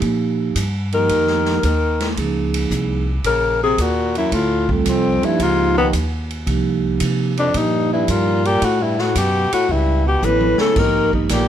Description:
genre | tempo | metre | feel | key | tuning
jazz, small-group swing and bop | 112 BPM | 4/4 | swing 69% on 8ths | unclear | A4 = 440 Hz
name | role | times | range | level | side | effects
vibraphone with soft mallets | accompaniment | 0.0-11.5 s | F3 to C#5 | -21 LUFS | right 6 dB | none
upright bass | bass | 0.0-11.5 s | Ab1 to C3 | -22 LUFS | equal | none
swinging big-band drum kit | drums | 0.0-11.5 s | crash cymbal, hi-hat, kick drum, ride cymbal, snare drum, toms | -26 LUFS | equal | none
breathy alto saxophone | melody | 0.9-11.5 s | A3 to B4 | -18 LUFS | left 5 dB | plate reverb
growling baritone saxophone | second line | 0.9-11.5 s | C2 to E3 | -23 LUFS | right 3 dB | none
room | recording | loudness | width
light reverb | none | -16 LUFS | side -10 dB against mid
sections
0.0-2.2 A section; 2.2-11.5 B section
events
drum fill 10.2-10.8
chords
0.0 Ebadd9; 2.2 Bbm11; 4.3 Dm7; 5.4 Dbadd9; 6.5 Cm7; 8.6 A69; 10.8 Abmaj7sus2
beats
| 0.02 0.56 1.10 1.64 | 2.17 2.71 3.25 3.79 | 4.32 4.86 5.40 5.93 | 6.47 7.01 7.55 8.08 | 8.62 9.16 9.69 10.23 | 10.77 11.30

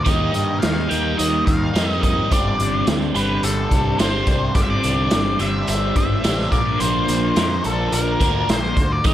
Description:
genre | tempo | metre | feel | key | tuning
psychedelic rock | 107 BPM | 4/4 | straight | unclear | A4 = 443 Hz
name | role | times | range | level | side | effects
octave-fuzz lead guitar | melody | 0.0-9.1 s | A4 to G5 | -24 LUFS | left 2 dB | wah, distortion, slapback echo
overdriven combo organ | sustained chords | 0.0-9.1 s | F3 to C5 | -31 LUFS | right 3 dB | none
overdriven electric guitar | riff | 0.1-9.1 s | G2 to Bb4 | -22 LUFS | equal | phaser
fuzz picked electric bass | bass | 0.1-9.1 s | G1 to G2 | -23 LUFS | equal | overdrive
raw garage drum kit | drums | 0.1-9.1 s | hi-hat, kick drum, snare drum | -22 LUFS | equal | none
room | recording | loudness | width
light reverb, small room reverb | none | -17 LUFS | side -12 dB against mid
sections
0.0-9.1 A section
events
none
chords
0.1 Eb; 2.3 Gsus4; 6.5 Bb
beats
| 0.07 0.63 1.19 1.75 | 2.31 2.87 3.43 4.00 | 4.56 5.12 5.68 6.24 | 6.80 7.36 7.92 8.49 | 9.05

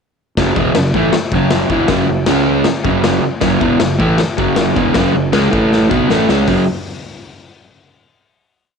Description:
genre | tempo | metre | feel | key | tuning
garage rock duo or trio | 157 BPM | 4/4 | straight | unclear | A4 = 440 Hz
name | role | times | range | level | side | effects
crunchy overdriven guitar | riff | 0.4-6.6 s | E2 to C#4 | -13 LUFS | right 1 dB | none
fuzz fingered electric bass | bass | 0.4-6.7 s | E1 to C#2 | -23 LUFS | right 1 dB | overdrive
raw garage drum kit | drums | 0.4-6.6 s | crash cymbal, hi-hat, kick drum, snare drum | -18 LUFS | left 4 dB | none
room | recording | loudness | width
light reverb, small room ambience | 1960s-style stereo | -12 LUFS | side -6 dB against mid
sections
0.4-6.5 riff; 6.5-8.0 final chord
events
drum fill 5.7-6.5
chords
0.4 F#5; 2.3 C#5; 2.7 F#5; 5.5 A5; 5.9 F#5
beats
| 0.38 0.76 1.14 1.52 | 1.91 2.29 2.67 3.05 | 3.44 3.82 4.20 4.58 | 4.96 5.34 5.72 6.11 | 6.48

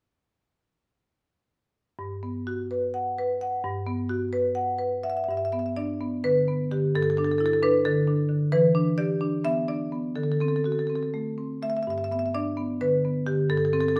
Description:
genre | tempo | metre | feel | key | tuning
classical, contemporary piece for solo marimba | 237-272 BPM (eighths) | 7/8 | rubato | G major | A4 = 441 Hz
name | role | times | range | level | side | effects
marimba with medium hard mallets | solo | 2.0-14.0 s | G2 to F#5 | -26 LUFS | equal | none
room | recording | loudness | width
moderate stone room reverb, RT60 1.0 s | none | -26 LUFS | mono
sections
2.0-5.3 A section; 5.3-14.0 B section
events
none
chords
2.0 Gmaj7; 5.3 G6; 7.0 Dsus24/G; 8.5 Em7; 10.2 D7; 11.9 G6; 13.5 D7sus4/G (rootless)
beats
| 1.99 2.23 2.47 2.71 2.95 3.18 3.42 | 3.65 3.88 4.10 4.33 4.56 4.79 5.04 | 5.29 5.53 5.77 6.01 6.25 6.48 6.72 | 6.95 7.18 7.41 7.64 7.86 8.08 8.30 | 8.53 8.75 8.98 9.21 9.44 9.68 9.92 | 10.17 10.41 10.66 10.90 11.14 11.38 11.63 | 11.88 12.11 12.35 12.58 12.81 13.04 13.27 | 13.49 13.72 13.95

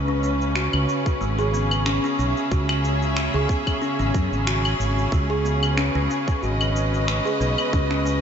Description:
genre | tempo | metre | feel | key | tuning
organic downtempo | 92 BPM | 4/4 | swing 55% on 16ths | C# minor | A4 = 442 Hz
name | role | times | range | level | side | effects
rich studio string section | sustained chords | 0.0-8.2 s | C#3 to E5 | -25 LUFS | equal | sidechain pumping, shimmer reverb
mellow fretless electric bass | bass | 0.0-8.2 s | G#1 to F#2 | -24 LUFS | equal | none
kalimba | arpeggios | 0.1-8.2 s | G#3 to G#4 | -26 LUFS | equal | diffuse ambient delay
electronic cabasa, finger snaps and claves | drums | 0.2-8.2 s | none | -29 LUFS | left 1 dB | none
electronic kick drum | drums | 1.1-7.9 s | none | -24 LUFS | equal | none
room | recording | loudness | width
moderate huge ambient reverb, RT60 8.6 s | dreamy mix soaked in reverb, nothing above 7.8 kHz | -20 LUFS | side -8 dB against mid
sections
0.0-8.2 A section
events
none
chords
0.0 C#m; 5.1 Badd9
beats
0.56 1.21 1.86 | 2.51 3.17 3.82 4.47 | 5.12 5.78 6.43 7.08 | 7.73

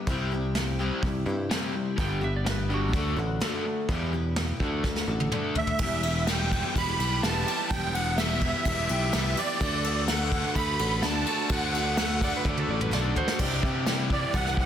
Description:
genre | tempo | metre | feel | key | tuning
folk rock and heartland rock | 126 BPM | 4/4 | straight | unclear | A4 = 440 Hz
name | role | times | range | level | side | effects
picked twelve-string acoustic guitar | accompaniment | 0.0-14.7 s | G2 to A4 | -34 LUFS | left 4 dB | wide subtle chorus
raw garage guitar | riff | 0.0-14.7 s | E2 to G4 | -32 LUFS | left 1 dB | overdrive
picked electric bass | bass | 0.1-14.7 s | E1 to C3 | -30 LUFS | equal | none
soft brush drum kit | drums | 0.1-14.7 s | crash cymbal, hi-hat, kick drum, ride cymbal, snare drum, toms | -29 LUFS | equal | soft clipping on kick
clean lap steel guitar | second line | 2.0-3.2, 12.2-13.4 s | F#4 to G5 | -36 LUFS | right 5 dB | none
musette accordion | melody | 5.6-14.7 s | D5 to B5 | -30 LUFS | right 4 dB | slapback echo
clear upright piano | accompaniment | 13.4-14.7 s | E4 to E5 | -40 LUFS | right 2 dB | none
room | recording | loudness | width
light reverb, small room ambience | dense, heavily limited modern master | -24 LUFS | side -9 dB against mid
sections
0.0-5.8 A section; 5.8-13.4 B section; 13.4-14.7 C section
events
drum fill 4.9-5.8, 12.5-13.4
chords
0.1 C; 2.0 G; 2.9 D; 3.9 Em; 4.6 D; 5.8 Em; 9.6 D; 13.4 Cadd9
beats
| 0.08 0.56 1.03 1.51 | 1.99 2.47 2.94 3.42 | 3.90 4.37 4.85 5.33 | 5.80 6.28 6.76 7.23 | 7.71 8.18 8.66 9.13 | 9.61 10.08 10.56 11.03 | 11.51 11.98 12.45 12.93 | 13.40 13.87 14.34

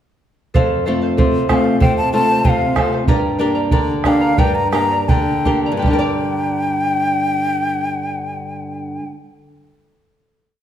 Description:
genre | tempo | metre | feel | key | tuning
andean folk, Andean ensemble | 76-95 BPM | 2/4 | straight | G minor | A4 = 440 Hz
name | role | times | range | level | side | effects
charango | accompaniment | 0.5-9.5 s | G4 to Bb5 | -21 LUFS | right 1 dB | none
bombo | percussion | 0.5-6.2 s | none | -18 LUFS | right 2 dB | none
nylon-string guitar | accompaniment | 0.6-9.2 s | F2 to D5 | -19 LUFS | left 1 dB | none
breathy bright large quena | melody | 1.5-9.1 s | F5 to Bb5 | -20 LUFS | left 2 dB | none
room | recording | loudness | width
wet recital hall reverb, RT60 1.3 s | none | -14 LUFS | side -10 dB against mid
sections
0.6-5.8 A section; 5.8-9.0 final chord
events
slowing down 3.1-5.8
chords
0.6 F; 3.1 Gm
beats
| 0.55 1.18 | 1.81 2.45 | 3.08 3.72 | 4.39 5.09 | 5.85 6.64 | 7.44 8.23

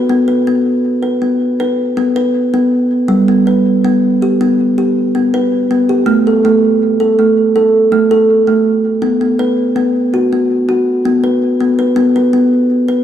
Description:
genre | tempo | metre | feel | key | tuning
world meditative, meditative tuned percussion | 81 BPM | 4/4 | straight | unclear | A4 = 441 Hz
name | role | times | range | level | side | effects
kalimba | solo | 0.0-13.0 s | G3 to B4 | -10 LUFS | equal | tape echo
room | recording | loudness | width
wet echo chamber reverb, RT60 2.0 s | dark, warm production | -10 LUFS | side -10 dB against mid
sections
0.0-13.0 A section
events
none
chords
0.0 B5; 3.1 G; 6.1 N.C.; 9.0 B5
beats
| 0.10 0.85 1.60 2.34 | 3.09 3.83 4.58 5.32 | 6.06 6.80 7.54 8.28 | 9.02 9.76 10.50 11.23 | 11.97 12.70

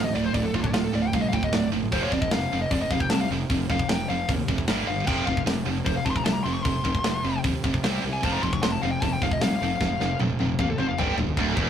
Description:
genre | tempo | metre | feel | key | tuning
heavy metal | 152 BPM | 4/4 | straight | unclear | A4 = 443 Hz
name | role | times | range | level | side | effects
high-gain lead guitar | melody | 0.0-11.1 s | D4 to C#6 | -29 LUFS | left 4 dB | distortion
heavy high-gain guitar | riff | 0.0-11.7 s | D2 to C4 | -27 LUFS | right 4 dB | distortion
tight distorted guitar | riff | 0.0-11.7 s | D2 to C4 | -32 LUFS | left 6 dB | distortion
fuzz fingered electric bass | bass | 0.0-11.7 s | D1 to Eb2 | -30 LUFS | equal | overdrive
tight metal drum kit | drums | 0.3-11.7 s | china cymbal, crash cymbal, hi-hat, kick drum, snare drum, toms | -28 LUFS | equal | none
fuzz guitar | riff | 11.4-11.7 s | D2 to E2 | -34 LUFS | equal | none
room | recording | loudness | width
light reverb | rough rehearsal-room recording | -22 LUFS | side -9 dB against mid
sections
0.0-11.4 A section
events
lead electric guitar solo 0.0-11.4; drum fill 9.8-11.4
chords
0.0 D5; 1.9 F5; 4.7 G5; 5.1 F5; 7.8 C5; 8.2 F5; 11.0 G5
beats
| 0.35 0.74 1.14 1.53 | 1.93 2.32 2.71 3.11 | 3.50 3.90 4.29 4.68 | 5.08 5.47 5.87 6.26 | 6.65 7.05 7.44 7.83 | 8.23 8.62 9.02 9.41 | 9.80 10.20 10.59 10.98 | 11.38

